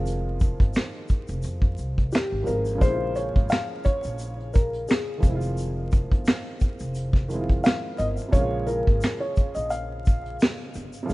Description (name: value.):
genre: lo-fi hip hop.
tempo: 87 BPM.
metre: 4/4.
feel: swing 56% on 16ths.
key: Bb minor.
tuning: A4 = 440 Hz.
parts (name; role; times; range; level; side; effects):
warm upright piano; accompaniment; 0.0-11.1 s; C3 to F4; -33 LUFS; right 2 dB; cassette tape.
upright bass; bass; 0.0-11.1 s; F1 to F2; -30 LUFS; equal; none.
vintage brush drum kit; drums; 0.1-11.1 s; finger snaps, hi-hat, kick drum, snare drum; -21 LUFS; equal; none.
tube shaker; percussion; 0.1-11.1 s; none; -50 LUFS; left 5 dB; none.
felt-muted upright piano; melody; 2.1-10.4 s; G4 to F5; -28 LUFS; left 1 dB; analog delay.
room: studio reverb.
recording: rough home demo mix, vinyl crackle, nothing above 10.5 kHz.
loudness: -22 LUFS.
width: side -20 dB against mid.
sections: 0.0-11.1 A section.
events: none.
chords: 0.0 Fm7; 2.8 Bbm7; 5.2 Fm7; 8.3 Bbm7.